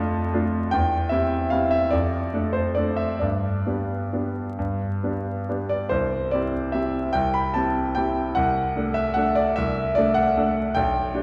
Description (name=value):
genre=classical, piano waltz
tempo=128-160 BPM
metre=3/4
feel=rubato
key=C major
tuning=A4 = 440 Hz
part: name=bright grand piano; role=solo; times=0.0-11.2 s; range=B1 to B5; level=-24 LUFS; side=equal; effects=none
room=wet concert hall reverb, RT60 2.2 s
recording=heard from further back in the room, vinyl crackle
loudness=-24 LUFS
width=mono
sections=0.0-5.9 A section; 5.9-11.2 A section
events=none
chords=0.0 Dm/F; 0.7 C/E; 1.9 Dm/F; 3.2 G; 5.9 C; 8.4 D7/C